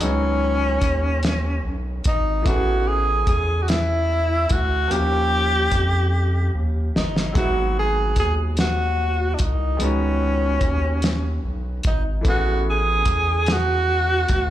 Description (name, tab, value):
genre	slow six-eight R&B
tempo	49 BPM (dotted quarters)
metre	6/8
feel	straight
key	C# minor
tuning	A4 = 441 Hz
part	breathy tenor saxophone	melody	0.0-14.5 s	C#4 to G#4	-22 LUFS	equal	slapback echo
part	clear baby grand piano	accompaniment	0.0-14.5 s	D#3 to G#4	-29 LUFS	left 1 dB	slapback echo
part	round analog bass	bass	0.0-14.5 s	G1 to E#2	-22 LUFS	equal	none
part	cloth-damped thuddy drum kit	drums	0.0-14.5 s	hi-hat, kick drum, snare drum	-22 LUFS	equal	none
room	small room reverb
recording	live gig heard through the venue's PA, club reverb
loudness	-18 LUFS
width	side -12 dB against mid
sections	0.0-14.5 A section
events	drum fill 6.1-7.4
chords	0.0 C#9sus4; 2.5 Amaj9; 4.9 D#7; 7.4 G#m7; 9.8 C#9sus4; 12.2 Amaj9